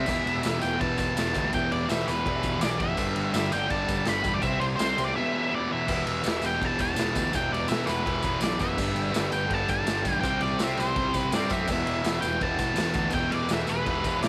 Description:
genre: garage rock duo or trio.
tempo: 165 BPM.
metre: 4/4.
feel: straight.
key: E minor.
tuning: A4 = 440 Hz.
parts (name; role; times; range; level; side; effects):
octave-fuzz lead guitar; melody; 0.0-14.3 s; B4 to B5; -32 LUFS; equal; distortion.
thick fuzz guitar; riff; 0.0-14.3 s; E2 to C4; -32 LUFS; equal; distortion.
fuzz picked electric bass; bass; 0.0-14.3 s; E1 to G2; -36 LUFS; equal; overdrive.
combo organ; sustained chords; 0.1-14.3 s; D4 to D5; -40 LUFS; equal; lush chorus.
raw garage drum kit; drums; 0.1-14.3 s; crash cymbal, kick drum, ride cymbal, snare drum; -33 LUFS; equal; none.
tambourine; percussion; 0.1-14.3 s; none; -43 LUFS; equal; none.
room: light reverb, small room ambience.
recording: none.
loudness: -27 LUFS.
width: mono.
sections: 0.0-5.9 A section; 5.9-14.3 A section.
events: none.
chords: 0.1 Em; 3.0 G; 4.4 C; 5.2 Em; 8.8 G; 10.2 C; 11.7 Em.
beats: | 0.08 0.45 0.81 1.17 | 1.53 1.90 2.26 2.62 | 2.98 3.35 3.71 4.07 | 4.43 4.80 5.16 5.52 | 5.89 6.25 6.61 6.97 | 7.34 7.70 8.06 8.42 | 8.79 9.15 9.51 9.88 | 10.24 10.60 10.96 11.33 | 11.69 12.05 12.42 12.78 | 13.14 13.51 13.87 14.23.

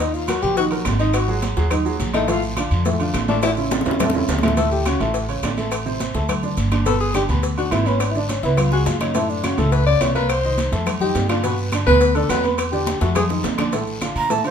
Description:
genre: Afro-Cuban jazz.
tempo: 210 BPM.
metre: 4/4.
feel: straight.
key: D major from 4.6 s.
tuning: A4 = 440 Hz.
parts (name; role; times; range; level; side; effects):
breathy tenor saxophone; second line; 0.0-13.2 s; C#4 to D5; -22 LUFS; left 5 dB; none.
warm baby grand piano; accompaniment; 0.0-14.5 s; A2 to B5; -23 LUFS; right 2 dB; none.
upright bass; bass; 0.0-14.5 s; G1 to Bb2; -22 LUFS; equal; none.
congas; percussion; 0.0-14.5 s; none; -29 LUFS; right 1 dB; none.
cowbell and bongos; percussion; 0.0-14.4 s; none; -29 LUFS; left 7 dB; none.
guiro; percussion; 0.0-14.5 s; none; -35 LUFS; left 3 dB; none.
maracas; percussion; 0.1-14.5 s; none; -38 LUFS; right 4 dB; none.
agogo bells and timbales; percussion; 0.3-14.5 s; none; -28 LUFS; right 7 dB; none.
claves; percussion; 0.3-14.2 s; none; -35 LUFS; left 7 dB; none.
breathy jazz flute; melody; 14.2-14.5 s; C5 to Bb5; -20 LUFS; right 5 dB; none.
room: moderate large studio reverb, RT60 0.9 s.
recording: minimal, uncompressed stereo recording.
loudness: -17 LUFS.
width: side -8 dB against mid.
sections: 0.0-4.6 A section; 4.6-13.7 A section.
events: tenor saxophone solo 0.0-13.7; drum fill 3.4-4.6, 8.7-9.2, 12.9-13.7.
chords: 0.0 Ebm; 1.1 Absus2; 2.3 Bbmaj7; 3.4 A; 4.6 D5; 5.7 Am; 6.3 D5; 6.9 G6; 8.0 G#dim; 8.6 C#5; 9.2 F#m7; 10.3 Cm7; 10.9 F9; 11.4 G6; 12.6 Em7; 13.2 Bbadd11; 13.7 Bbmaj7.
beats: 0.28 0.57 0.85 | 1.14 1.43 1.71 2.00 | 2.28 2.57 2.86 3.14 | 3.43 3.71 4.00 4.29 | 4.57 4.86 5.15 5.43 | 5.72 6.00 6.29 6.58 | 6.86 7.15 7.44 7.72 | 8.01 8.29 8.58 8.87 | 9.15 9.44 9.72 10.01 | 10.30 10.58 10.87 11.15 | 11.44 11.73 12.01 12.30 | 12.59 12.87 13.16 13.44 | 13.73 14.02 14.30.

